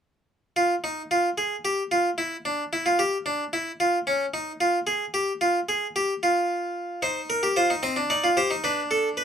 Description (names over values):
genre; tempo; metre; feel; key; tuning
classical, baroque-style 3-part fugue for harpsichord; 74 BPM (dotted quarters); 12/8; straight; unclear; A4 = 440 Hz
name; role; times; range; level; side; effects
harpsichord; solo; 0.6-9.2 s; C4 to Eb5; -22 LUFS; equal; none
room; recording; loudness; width
light reverb; close, detailed microphones; -23 LUFS; side -8 dB against mid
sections
0.6-9.2 A section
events
none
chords
0.6 N.C.; 7.0 Cm/Eb; 8.6 Bm7